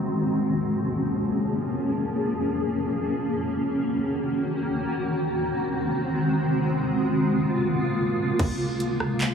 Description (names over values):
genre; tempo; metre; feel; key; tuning
hip hop, atmospheric cloud-rap; free time; none; none; Db major; A4 = 440 Hz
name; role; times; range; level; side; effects
granular cloud pad; sustained chords; 0.0-9.3 s; Db3 to Ab4; -23 LUFS; equal; built-in reverb, ensemble chorus, sidechain pumping, low-pass filter
soft 808-style bass; bass; 8.4-9.3 s; Db2; -32 LUFS; equal; none
trap drum kit; drums; 8.4-9.3 s; crash cymbal, handclaps, hi-hat, kick drum, rim click; -28 LUFS; equal; none
room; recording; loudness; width
wet cathedral reverb, RT60 6.7 s; dreamy mix soaked in reverb, small room ambience; -23 LUFS; side -7 dB against mid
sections
0.0-8.4 A section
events
filter sweep on ambient pad 0.0-8.4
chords
0.3 Bbm7; 3.5 Ebm7; 5.2 Ab7; 6.8 Db6